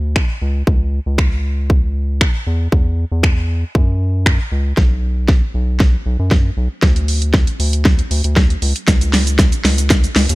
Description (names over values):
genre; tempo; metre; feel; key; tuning
dance-pop; 117 BPM; 4/4; straight; B minor; A4 = 443 Hz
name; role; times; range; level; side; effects
round analog bass; bass; 0.0-10.3 s; B1 to F#2; -17 LUFS; equal; sidechain pumping
pop drum kit; drums; 0.2-10.3 s; finger snaps, hi-hat, kick drum, shaker, snare drum; -14 LUFS; equal; none
room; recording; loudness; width
digital ambience; none; -13 LUFS; side -20 dB against mid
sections
0.0-4.8 A section; 4.8-10.3 B section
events
build-up 4.8-10.3; drum fill 4.8-10.3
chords
none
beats
0.16 | 0.67 1.19 1.70 2.21 | 2.72 3.24 3.75 4.26 | 4.78 5.29 5.80 6.31 | 6.83 7.34 7.85 8.37 | 8.88 9.39 9.90